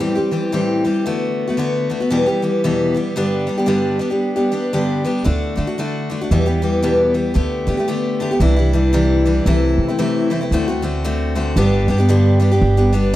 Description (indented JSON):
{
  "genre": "acoustic folk duo or small band",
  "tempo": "114 BPM",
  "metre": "4/4",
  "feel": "swing 60% on 8ths",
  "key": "D mixolydian",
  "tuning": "A4 = 440 Hz",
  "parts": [
    { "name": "picked steel-string acoustic guitar", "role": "accompaniment", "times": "0.0-13.2 s", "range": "E2 to G4", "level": "-16 LUFS", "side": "left 1 dB", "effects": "none" },
    { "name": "upright bass", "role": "bass", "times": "5.3-13.2 s", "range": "G1 to D3", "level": "-18 LUFS", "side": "right 1 dB", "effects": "none" }
  ],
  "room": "moderate large studio reverb, RT60 1.3 s",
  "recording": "dark, warm production",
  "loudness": "-15 LUFS",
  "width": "side -14 dB against mid",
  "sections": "0.0-13.2 A section",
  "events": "none",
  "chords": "0.0 Am7; 1.1 D6; 2.1 Em; 3.2 G; 5.3 D; 6.3 Em; 7.4 Gadd9/D; 8.4 Cadd9; 9.5 Am/C; 10.5 D7; 11.6 G"
}